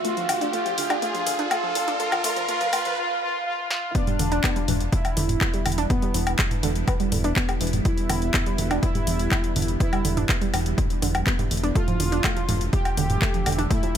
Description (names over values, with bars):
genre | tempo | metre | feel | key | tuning
melodic techno | 123 BPM | 4/4 | straight | E phrygian | A4 = 442 Hz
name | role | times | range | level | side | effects
analog synth brass | melody | 0.0-14.0 s | B3 to G4 | -28 LUFS | equal | chorus, ping-pong delay
evolving wavetable pad | sustained chords | 0.0-14.0 s | E2 to E5 | -34 LUFS | right 2 dB | chorus, built-in reverb, sidechain pumping
warbly dusty pluck | arpeggios | 0.0-14.0 s | D3 to D4 | -30 LUFS | right 2 dB | chorus, sidechain pumping, tape echo
analog drone | drone | 0.0-3.0 s | none | barely audible | none | none
house drum kit | drums | 0.0-14.0 s | handclaps, hi-hat, snare drum, toms, woodblock | -27 LUFS | left 1 dB | sidechain pumping on hats, high-pass filter on hats, small room ambience, sidechain pumping on toms, high-pass filter on toms, sidechain pumping on perc, high-pass filter on perc, high-pass filter on snare
riser | sound effects | 0.0-3.0 s | none | -30 LUFS | right 1 dB | none
electronic kick drum | drums | 3.9-13.8 s | none | -25 LUFS | equal | small room ambience
round analog bass | bass | 4.2-14.0 s | E1 | -25 LUFS | equal | sidechain pumping
room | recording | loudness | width
light reverb | high-pass filter | -21 LUFS | side -9 dB against mid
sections
0.0-3.9 A section; 3.9-14.0 B section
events
build-up 0.0-3.9; riser 0.0-3.0; filter sweep on synth arpeggio sound 0.0-3.9; filter sweep on analog polysynth 0.0-3.9; break 3.0-3.9; drum fill 3.7; drop 3.9-14.0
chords
0.0 Dmadd9/E; 3.9 Em7; 11.8 Dmadd9/E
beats
| 0.05 0.54 1.02 1.51 | 2.00 2.49 2.97 3.46 | 3.95 4.44 4.92 5.41 | 5.90 6.39 6.88 7.36 | 7.85 8.34 8.83 9.31 | 9.80 10.29 10.78 11.27 | 11.75 12.24 12.73 13.22 | 13.71